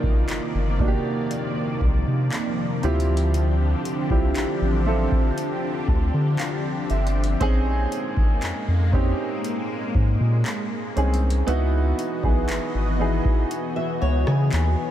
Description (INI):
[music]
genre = contemporary R&B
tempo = 59 BPM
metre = 4/4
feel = straight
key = unclear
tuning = A4 = 440 Hz
[part]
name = dark grand piano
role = accompaniment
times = 0.0-14.9 s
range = Bb3 to A5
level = -27 LUFS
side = right 3 dB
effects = analog chorus
[part]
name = lush unison pad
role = sustained chords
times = 0.0-14.9 s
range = C3 to Eb5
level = -28 LUFS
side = left 1 dB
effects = chorus, phaser, sidechain pumping
[part]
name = round analog bass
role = bass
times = 0.0-14.8 s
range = G1 to D3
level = -22 LUFS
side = equal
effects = none
[part]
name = booming analog drum machine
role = drums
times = 0.0-14.8 s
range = handclaps, hi-hat, kick drum, rim click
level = -25 LUFS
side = equal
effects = none
[part]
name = fingerpicked swing-style acoustic guitar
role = arpeggios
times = 13.8-14.9 s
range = Ab4 to Fb5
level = -31 LUFS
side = equal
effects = analog chorus, tape echo
[sound]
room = light reverb, digital ambience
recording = none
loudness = -20 LUFS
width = side -11 dB against mid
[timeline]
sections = 0.0-14.9 A section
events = grand piano fill 5.4-7.4; kick muted 13.5-14.9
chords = 0.0 Cm11; 2.8 Dm11; 7.4 Bbm11; 11.5 Dbm11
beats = 0.29 1.30 2.32 | 3.34 4.36 5.37 6.39 | 7.41 8.42 9.44 10.46 | 11.47 12.49 13.51 14.53